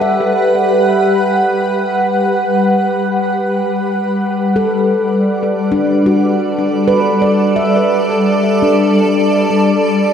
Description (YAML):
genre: ambient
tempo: 52 BPM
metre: 4/4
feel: straight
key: G major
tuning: A4 = 441 Hz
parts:
  - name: granular cloud pad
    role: sustained chords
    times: 0.0-10.1 s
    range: G3 to F#5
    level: -12 LUFS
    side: equal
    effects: built-in reverb
  - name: handpan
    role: arpeggios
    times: 0.0-10.1 s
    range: D4 to E5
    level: -17 LUFS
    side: left 1 dB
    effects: tape echo
room: wet lush hall reverb, RT60 3.0 s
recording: dreamy mix soaked in reverb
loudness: -11 LUFS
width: side -8 dB against mid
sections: 0.0-10.1 A section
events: none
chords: 0.0 Gmaj7